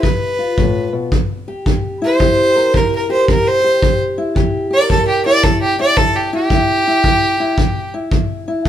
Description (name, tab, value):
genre	acoustic country blues, solo or duo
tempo	111 BPM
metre	4/4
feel	swing 65% on 8ths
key	C mixolydian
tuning	A4 = 440 Hz
part	rich fiddle	melody	0.0-7.9 s	G4 to D5	-15 LUFS	right 1 dB	none
part	fingerpicked old ladder-braced acoustic guitar	accompaniment	0.0-8.7 s	G2 to Bb4	-19 LUFS	left 1 dB	none
part	kick drum	drums	0.0-8.7 s	none	-17 LUFS	equal	none
room	moderate large studio reverb, RT60 1.3 s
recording	band playing live in one room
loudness	-13 LUFS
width	side -10 dB against mid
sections	0.0-1.1 A section; 1.1-8.7 B section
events	fiddle solo 1.1-8.7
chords	0.0 G7; 1.1 C7